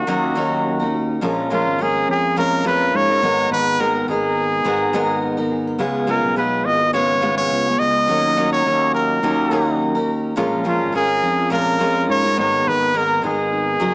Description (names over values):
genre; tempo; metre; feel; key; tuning
pop; 105 BPM; 4/4; swing 55% on 16ths; unclear; A4 = 435 Hz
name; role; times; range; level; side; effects
brilliant trumpet; melody; 0.0-13.9 s; E#4 to D#5; -18 LUFS; equal; cassette tape
picked steel-string acoustic guitar; accompaniment; 0.0-13.9 s; G#2 to A#4; -20 LUFS; equal; none
nylon-string guitar; arpeggios; 0.0-13.9 s; E#3 to A#4; -32 LUFS; right 1 dB; none
fretless electric bass; bass; 0.0-13.9 s; F#1 to G#2; -25 LUFS; equal; none
room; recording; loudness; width
light reverb, small room reverb; home recording on cassette, small speaker sound; -16 LUFS; side -30 dB against mid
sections
0.0-13.9 A section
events
none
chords
0.0 D#m7; 1.2 A#m7; 3.2 G#madd9; 5.8 C#7; 8.1 D#m7; 10.4 A#m7; 12.4 G#madd9